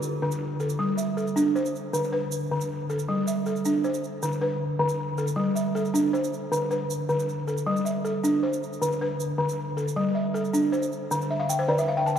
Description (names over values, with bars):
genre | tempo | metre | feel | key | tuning
west african traditional, West African string and xylophone music | 105 BPM (dotted quarters) | 12/8 | straight | unclear | A4 = 440 Hz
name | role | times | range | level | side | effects
balafon | arpeggios | 0.0-12.2 s | D3 to A5 | -24 LUFS | equal | none
tube shaker | percussion | 0.0-12.2 s | none | -38 LUFS | right 8 dB | none
room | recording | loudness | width
wet cathedral reverb, RT60 4.9 s | in a vast, echoing space, lossy compression artefacts | -24 LUFS | side -9 dB against mid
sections
0.0-12.2 A section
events
balafon fill 11.3-12.2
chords
0.0 D5; 0.8 G5; 1.9 D5; 3.1 G5; 4.2 D5; 5.4 G5; 6.5 D5; 7.7 G5; 8.8 D5; 10.0 G5; 11.1 Dm11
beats
0.22 0.79 1.36 | 1.93 2.50 3.08 3.65 | 4.22 4.80 5.37 5.94 | 6.52 7.09 7.66 8.24 | 8.81 9.38 9.96 10.53 | 11.11 11.68